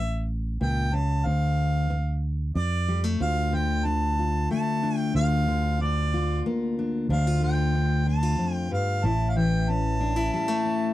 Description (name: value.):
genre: folk.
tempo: 93 BPM.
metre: 3/4.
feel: straight.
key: D minor.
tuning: A4 = 445 Hz.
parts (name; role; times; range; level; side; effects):
warm harmonica; melody; 0.0-10.9 s; D5 to A5; -30 LUFS; right 1 dB; none.
fingered electric bass; bass; 0.0-10.3 s; A1 to F2; -25 LUFS; right 1 dB; none.
fingerpicked steel-string acoustic guitar; accompaniment; 0.6-10.9 s; D2 to F4; -27 LUFS; left 3 dB; none.
room: little or no reverb.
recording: dry, close 1970s-style studio recording.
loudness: -23 LUFS.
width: side -14 dB against mid.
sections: 0.0-3.2 A section; 3.2-10.9 B section.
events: none.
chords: 0.0 A; 1.3 Dm; 5.2 Bb/D; 7.1 Dm; 9.0 A.